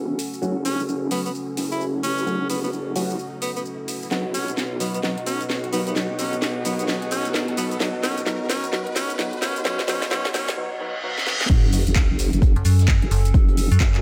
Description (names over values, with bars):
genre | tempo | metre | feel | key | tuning
bass house | 130 BPM | 4/4 | swing 62% on 16ths | F# dorian | A4 = 440 Hz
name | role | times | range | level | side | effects
dark analog pad | sustained chords | 0.0-14.0 s | B3 to D#5 | -36 LUFS | equal | chorus, sidechain pumping
vowel-sweep wobble bass | bass | 0.0-14.0 s | E1 to F#2 | -30 LUFS | equal | chorus, tube saturation, sidechain pumping, high-pass filter
riser, reverse cymbal and sub drop | sound effects | 0.9-13.3 s | none | -34 LUFS | equal | none
warbly tape-like pad | texture | 0.0-14.0 s | C#4 to F#5 | -37 LUFS | equal | chorus, built-in reverb, sidechain pumping
house drum kit | drums | 0.2-14.0 s | crash cymbal, handclaps, hi-hat, shaker, snare drum | -30 LUFS | equal | none
percussive organ stab | stabs | 0.4-11.4 s | F#3 to F#4 | -33 LUFS | equal | subtle chorus, cassette tape, sidechain pumping, delay
bright alto saxophone | melody | 0.6-10.5 s | B3 to E4 | -32 LUFS | equal | vintage 12-bit sampler grit, delay
electronic kick drum | drums | 11.5-13.9 s | none | -20 LUFS | equal | none
open jazz drum kit | drums | 11.5-13.9 s | hi-hat, snare drum | -45 LUFS | equal | none
metallic FM bass | bass | 12.6-13.8 s | F#1 to F#2 | -19 LUFS | equal | tube saturation, sidechain pumping
room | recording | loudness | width
light reverb | high-pass filter | -23 LUFS | mono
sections
0.0-11.5 A section; 11.5-14.0 B section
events
build-up 0.0-11.5; filter sweep 0.0-11.5; drum fill 4.1-10.6, 11.1-11.5; reverse cymbal 10.6-11.5; drop 11.5-14.0; impact 11.5-13.3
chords
0.0 F#m; 4.1 B; 11.5 F#m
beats
| 0.42 0.88 1.34 1.80 | 2.27 2.73 3.19 3.65 | 4.11 4.57 5.03 5.50 | 5.96 6.42 6.88 7.34 | 7.80 8.27 8.73 9.19 | 9.65 10.11 10.57 11.03 | 11.49 11.96 12.42 12.88 | 13.34 13.80